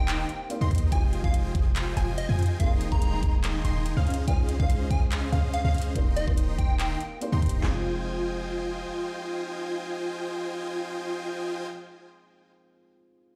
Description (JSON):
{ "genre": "future bass", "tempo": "143 BPM", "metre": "4/4", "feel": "half-time", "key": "F minor", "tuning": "A4 = 440 Hz", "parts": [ { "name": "plucky unison lead", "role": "melody", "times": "0.0-7.2 s", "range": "Eb5 to Bb5", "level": "-38 LUFS", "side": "equal", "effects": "sidechain pumping, tape echo" }, { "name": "felt-muted upright piano", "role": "accompaniment", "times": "0.0-13.4 s", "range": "F3 to C5", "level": "-40 LUFS", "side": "equal", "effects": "sidechain pumping, delay" }, { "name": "unison pluck", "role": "arpeggios", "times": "0.0-11.7 s", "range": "Ab4 to C6", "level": "-44 LUFS", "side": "equal", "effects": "cassette tape, sidechain pumping" }, { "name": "dense compressed supersaw", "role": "riff", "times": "0.0-11.7 s", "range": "Db4 to C6", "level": "-35 LUFS", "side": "equal", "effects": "sidechain pumping" }, { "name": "warm 808-style bass", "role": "bass", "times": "0.0-8.9 s", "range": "Eb1 to F2", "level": "-29 LUFS", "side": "equal", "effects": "sidechain pumping" }, { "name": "big-room dance drum kit", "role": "drums", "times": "0.1-7.6 s", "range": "handclaps, hi-hat", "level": "-38 LUFS", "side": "equal", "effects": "none" }, { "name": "dubstep drum kit", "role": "drums", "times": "0.7-7.7 s", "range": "handclaps, kick drum, snare drum", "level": "-27 LUFS", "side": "equal", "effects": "overdrive" } ], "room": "digital ambience", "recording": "played on a big sound system in a bare room, large studio reverb", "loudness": "-27 LUFS", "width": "mono", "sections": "0.0-7.6 A section; 7.6-11.0 B section", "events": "drop 0.0-7.6", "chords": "0.0 Cm7/Eb; 0.9 Fm9; 2.6 Abmaj9/Eb; 4.1 Dbmaj9; 6.0 Cm7/Eb; 7.6 Fm9", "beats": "0.08 0.50 | 0.92 1.34 1.76 2.18 | 2.60 3.02 3.44 3.86 | 4.28 4.70 5.12 5.54 | 5.96 6.38 6.79 7.21 | 7.63 8.05 8.47 8.89 | 9.31 9.73 10.15 10.57" }